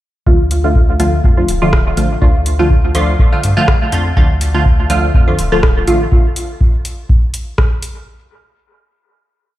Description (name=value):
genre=dub techno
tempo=123 BPM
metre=4/4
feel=swing 55% on 16ths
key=D minor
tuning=A4 = 439 Hz
part: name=filtered dub chord stab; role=stabs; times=0.3-6.0 s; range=D3 to F4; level=-15 LUFS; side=equal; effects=chorus, phaser, sidechain pumping, dub echo
part: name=soft dub sub bass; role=bass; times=0.3-6.1 s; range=D1 to G2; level=-16 LUFS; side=equal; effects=tube saturation, sidechain pumping
part: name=electronic kick drum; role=drums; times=0.3-7.7 s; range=none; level=-12 LUFS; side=equal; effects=none
part: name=booming analog drum machine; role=drums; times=0.5-7.9 s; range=hi-hat, rim click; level=-22 LUFS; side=equal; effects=none
room=digital ambience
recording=played on a big sound system in a bare room, large studio reverb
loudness=-11 LUFS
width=side -15 dB against mid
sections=0.3-8.1 groove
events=none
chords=0.3 Dm